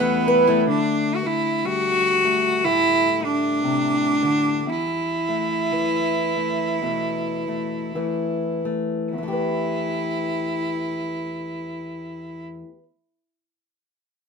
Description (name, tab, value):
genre	acoustic folk duo or small band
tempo	50-62 BPM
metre	4/4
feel	swing 58% on 8ths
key	E minor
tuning	A4 = 440 Hz
part	bright cello	melody	0.0-12.4 s	B3 to F#4	-22 LUFS	right 1 dB	none
part	fingerpicked acoustic archtop guitar	accompaniment	0.0-12.8 s	E2 to B4	-25 LUFS	left 3 dB	none
part	accordion	sustained chords	0.0-0.7 s	E3 to E4	-26 LUFS	left 2 dB	none
part	mandolin	arpeggios	0.0-0.8 s	G3 to F#5	-24 LUFS	right 7 dB	none
room	moderate studio reverb, RT60 0.6 s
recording	minimal, uncompressed stereo recording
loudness	-20 LUFS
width	side -5 dB against mid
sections	0.7-9.1 A section; 9.1-14.0 B section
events	slowing down 0.7-9.1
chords	0.0 Emadd9; 0.7 Dsus4; 4.7 E5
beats	| 0.67 1.64 2.63 3.63 | 4.66 5.72 6.81 7.94 | 9.12 10.33 11.54 12.76